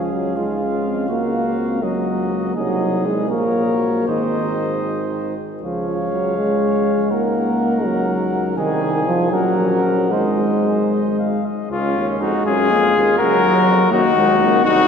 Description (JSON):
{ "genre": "classical, brass quintet", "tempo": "75-83 BPM (dotted quarters)", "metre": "6/8", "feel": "rubato", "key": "Db major", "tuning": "A4 = 440 Hz", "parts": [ { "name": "mellow cornet", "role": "melody", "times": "0.0-14.9 s", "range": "F4 to Ab5", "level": "-21 LUFS", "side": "left 5 dB", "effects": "none" }, { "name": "clear flugelhorn", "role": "second line", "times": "0.0-14.9 s", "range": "Db4 to Db5", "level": "-24 LUFS", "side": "right 3 dB", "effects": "none" }, { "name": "clear euphonium", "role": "accompaniment", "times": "0.0-14.9 s", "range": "Eb3 to Bb3", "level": "-20 LUFS", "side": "right 1 dB", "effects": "none" }, { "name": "dark French horn", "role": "accompaniment", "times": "0.0-14.9 s", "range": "Gb3 to Ab4", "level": "-25 LUFS", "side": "left 3 dB", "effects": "none" }, { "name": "bright bass trombone", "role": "bass", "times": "0.0-14.9 s", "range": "Ab1 to Gb2", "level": "-25 LUFS", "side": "right 1 dB", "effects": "none" } ], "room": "wet church reverb, RT60 3.3 s", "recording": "dark, warm production", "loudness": "-16 LUFS", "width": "side -6 dB against mid", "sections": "0.0-11.7 A section; 11.7-14.9 A section", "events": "none", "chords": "0.0 Db; 1.1 Ebm7/Db; 2.6 Ab/C; 3.3 Bbm; 4.1 Ab; 5.6 Db; 7.1 Ebm7/Db; 8.6 Ab/C; 9.3 Gb/Bb; 10.1 Ab; 11.7 Db", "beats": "0.36 | 1.10 1.83 | 2.56 3.31 | 4.08 4.86 | 5.63 6.38 | 7.11 7.84 | 8.57 9.34 | 10.12 10.92 | 11.71 12.46 | 13.19 13.93 | 14.65" }